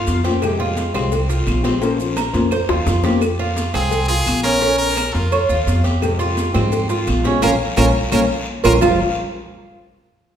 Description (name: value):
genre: latin, Cuban son and guajira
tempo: 172 BPM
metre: 4/4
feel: straight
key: F minor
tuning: A4 = 440 Hz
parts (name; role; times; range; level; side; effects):
- brilliant trumpet; melody; 0.0-0.2, 3.8-8.7 s; F4 to F5; -22 LUFS; equal; none
- Cuban tres; arpeggios; 0.0-9.0 s; C4 to F5; -20 LUFS; right 3 dB; none
- upright bass; bass; 0.0-9.0 s; F1 to Ab2; -21 LUFS; equal; none
- congas; percussion; 0.1-8.9 s; none; -27 LUFS; left 2 dB; none
- cowbell and bongos; percussion; 0.1-8.9 s; none; -27 LUFS; left 4 dB; none
- guiro; percussion; 0.1-8.9 s; none; -33 LUFS; left 3 dB; none
- maracas; percussion; 0.1-8.9 s; none; -38 LUFS; right 6 dB; none
- nylon-string guitar; accompaniment; 0.2-3.2, 6.0-9.0 s; F2 to C5; -22 LUFS; left 3 dB; none
- claves; percussion; 0.4-8.9 s; none; -34 LUFS; right 4 dB; none
room: wet recital hall reverb, RT60 1.4 s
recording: recorded in a church or concert hall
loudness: -15 LUFS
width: side -9 dB against mid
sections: 0.0-3.2 A section; 3.2-8.8 B section; 8.8-10.2 C section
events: drum fill 2.7-3.2, 7.9-8.8; band accent 7.4-8.8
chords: 0.4 Fmadd9; 1.8 Bbmadd9; 3.2 Fm; 4.6 Bbm; 6.0 Fmadd9; 7.4 Bbmadd9; 8.8 F5